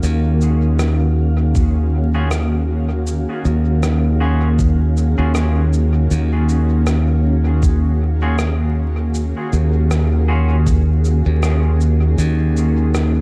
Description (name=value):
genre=ambient dub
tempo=79 BPM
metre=4/4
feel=swing 57% on 16ths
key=Eb minor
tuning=A4 = 439 Hz
part: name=granular cloud pad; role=sustained chords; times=0.0-13.2 s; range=Eb3 to F5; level=-26 LUFS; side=equal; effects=built-in reverb
part: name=modern bright fingered electric bass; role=bass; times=0.0-13.2 s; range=Eb2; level=-17 LUFS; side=equal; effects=none
part: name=electronic shaker and rim click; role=drums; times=0.0-13.1 s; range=none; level=-30 LUFS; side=equal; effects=dub echo
part: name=electronic kick drum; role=drums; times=1.6-10.8 s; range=none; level=-20 LUFS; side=equal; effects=none
part: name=clean electric guitar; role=stabs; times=2.1-10.6 s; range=Db4 to Ab4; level=-32 LUFS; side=equal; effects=dub echo
room=little or no reverb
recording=echo-heavy mix, vinyl crackle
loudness=-17 LUFS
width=mono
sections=0.0-13.2 A section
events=none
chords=0.0 Ebm11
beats=| 0.04 0.80 1.55 2.31 | 3.07 3.83 4.59 5.35 | 6.11 6.87 7.63 8.39 | 9.15 9.91 10.67 11.43 | 12.19 12.95